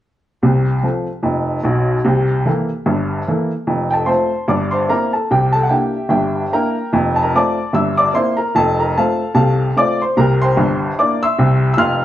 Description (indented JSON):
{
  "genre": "jazz, stride piano",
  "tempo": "148 BPM",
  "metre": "4/4",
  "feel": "swing 58% on 8ths",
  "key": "F major",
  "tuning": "A4 = 440 Hz",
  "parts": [
    { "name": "clear upright piano", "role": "solo", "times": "0.4-12.0 s", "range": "F1 to F6", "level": "-14 LUFS", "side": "equal", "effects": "none" }
  ],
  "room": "moderate stone room reverb, RT60 1.0 s",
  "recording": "band playing live in one room",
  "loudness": "-14 LUFS",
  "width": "side -12 dB against mid",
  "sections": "0.4-3.7 A section; 3.7-12.0 B section",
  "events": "none",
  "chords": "0.4 F/C; 2.1 C6; 3.7 F; 4.5 C7/G; 6.9 F; 7.7 C7/G; 8.6 F; 10.2 C9"
}